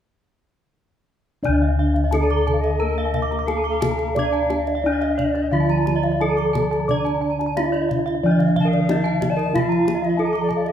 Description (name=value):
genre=Balinese gamelan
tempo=89 BPM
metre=4/4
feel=uneven beats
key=D pelog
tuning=A4 = 438 Hz
part: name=gamelan-type bronze metallophone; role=arpeggios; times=1.4-10.7 s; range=D5 to D6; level=-28 LUFS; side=left 6 dB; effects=none
part: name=gamelan-type bossed gongs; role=bass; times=1.4-10.7 s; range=D2 to D5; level=-22 LUFS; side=equal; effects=none
part: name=kendang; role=percussion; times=1.4-10.7 s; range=none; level=-29 LUFS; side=left 3 dB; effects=none
part: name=gamelan-type bronze metallophone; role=melody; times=1.5-10.7 s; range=D4 to D5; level=-23 LUFS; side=equal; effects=none
part: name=gamelan-type bronze metallophone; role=accompaniment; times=1.5-10.7 s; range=D3 to D4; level=-28 LUFS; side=right 3 dB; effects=none
part: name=gamelan-type bronze metallophone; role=arpeggios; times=1.5-10.7 s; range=Bb4-20c to D6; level=-28 LUFS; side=right 5 dB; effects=none
part: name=breathy alto recorder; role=second line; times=2.2-10.7 s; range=D5 to A5-27c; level=-29 LUFS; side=left 3 dB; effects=none
room=moderate recital hall reverb, RT60 1.4 s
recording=minimal, uncompressed stereo recording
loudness=-18 LUFS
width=side -9 dB against mid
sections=1.4-10.7 A section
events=none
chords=none